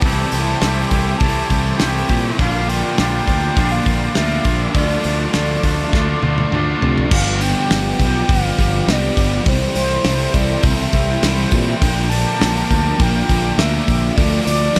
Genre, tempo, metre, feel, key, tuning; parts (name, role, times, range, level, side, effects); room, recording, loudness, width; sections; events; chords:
rock, shoegaze and dream pop; 102 BPM; 4/4; straight; A4 = 444 Hz
mellow horn-like synth lead; melody; 0.0-14.8 s; C5 to A5; -26 LUFS; equal; chorus, tape echo
dark analog pad; sustained chords; 0.0-14.8 s; E4 to D6; -31 LUFS; equal; chorus
crunchy overdriven guitar; riff; 0.0-14.8 s; G2 to G4; -25 LUFS; equal; ensemble chorus
crunchy overdriven guitar; riff; 0.0-14.8 s; G2 to E4; -27 LUFS; equal
twangy electric guitar; riff; 0.0-7.1 s; Bb2 to G4; -26 LUFS; equal; reverse reverb
growling fingered electric bass; bass; 0.0-14.8 s; G1 to C3; -23 LUFS; equal; overdrive
loose indie drum kit; drums; 0.0-14.8 s; crash cymbal, hi-hat, kick drum, snare drum, toms; -22 LUFS; equal
light reverb, small room ambience; -17 LUFS; mono
0.0-7.1 A section; 7.1-14.8 A section
drum fill 5.9-7.1
0.0 C6; 2.4 Bb6; 4.8 Dm; 7.1 G7; 9.5 C6; 11.8 Bb6; 14.2 Dm